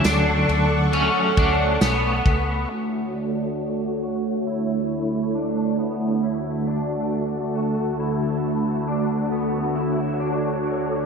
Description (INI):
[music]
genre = dream pop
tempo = 68 BPM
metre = 4/4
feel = straight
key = unclear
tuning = A4 = 440 Hz
[part]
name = electric guitar at the edge of break-up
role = accompaniment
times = 0.0-3.2 s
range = D3 to F#4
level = -24 LUFS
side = right 1 dB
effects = tremolo, lush chorus
[part]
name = string machine, violas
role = sustained chords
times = 0.0-11.1 s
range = D2 to D6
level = -23 LUFS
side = right 1 dB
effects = ensemble chorus, low-pass filter
[part]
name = electric guitar at the edge of break-up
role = arpeggios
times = 0.0-11.1 s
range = B3 to F#4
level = -28 LUFS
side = left 2 dB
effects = ensemble chorus, low-pass filter, digital delay
[part]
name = vintage muted fingered electric bass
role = bass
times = 0.0-2.6 s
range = B1 to D2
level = -24 LUFS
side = equal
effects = none
[part]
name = loose indie drum kit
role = drums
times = 0.0-2.5 s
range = kick drum, ride cymbal, snare drum, tambourine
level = -24 LUFS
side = equal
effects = none
[part]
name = large celesta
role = texture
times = 1.1-3.1 s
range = A4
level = -34 LUFS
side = right 2 dB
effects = none
[sound]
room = wet lush hall reverb, RT60 2.4 s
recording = bright 1980s-style digital production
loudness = -20 LUFS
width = side -5 dB against mid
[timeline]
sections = 0.0-2.7 A section; 2.7-11.1 B section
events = none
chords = 0.0 Dmaj7; 2.7 Bm7/D; 6.2 D; 9.8 Bm7/D (rootless)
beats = 0.05 0.93 1.81 | 2.70 3.58 4.46 5.34 | 6.22 7.11 7.99 8.87 | 9.75 10.64